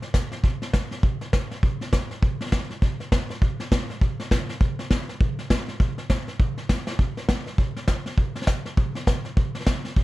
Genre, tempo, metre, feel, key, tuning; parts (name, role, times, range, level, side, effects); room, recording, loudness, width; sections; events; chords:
rock; 202 BPM; 4/4; swing 60% on 8ths
vintage brush drum kit; drums; 0.0-10.0 s; hi-hat, kick drum, snare drum; -22 LUFS; equal
little or no reverb; -22 LUFS; side -18 dB against mid
0.0-10.0 A section
drum fill 6.8